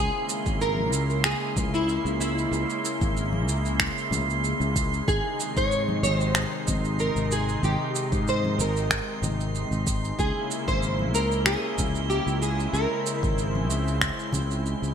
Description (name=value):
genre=sunset chillout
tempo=94 BPM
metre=4/4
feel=swing 53% on 16ths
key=unclear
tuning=A4 = 440 Hz
part: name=nylon-string guitar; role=melody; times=0.0-14.6 s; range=Fb4 to Db5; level=-28 LUFS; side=equal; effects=ensemble chorus, ping-pong delay
part: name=lush unison pad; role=sustained chords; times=0.0-14.9 s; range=C3 to Fb4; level=-31 LUFS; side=equal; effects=chorus
part: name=sustaining fretless electric bass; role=bass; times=0.0-14.9 s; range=Ab1 to Ab2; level=-27 LUFS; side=equal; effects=none
part: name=drifting glass-harmonics texture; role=texture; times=0.0-14.9 s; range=C6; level=-35 LUFS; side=right 4 dB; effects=chorus, built-in reverb
part: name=electronic shaker and finger snaps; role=drums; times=0.3-14.9 s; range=none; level=-28 LUFS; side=right 1 dB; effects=gated reverb
part: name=electronic kick drum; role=drums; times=0.5-14.2 s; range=none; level=-29 LUFS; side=equal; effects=none
part: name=congas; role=percussion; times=0.8-14.5 s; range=none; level=-36 LUFS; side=left 3 dB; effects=none
room=moderate lush hall reverb, RT60 1.8 s, digital ambience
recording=bright 1980s-style digital production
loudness=-23 LUFS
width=side -8 dB against mid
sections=0.0-14.9 A section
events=none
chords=0.0 Dbm6; 5.1 Ab; 10.2 Dbm6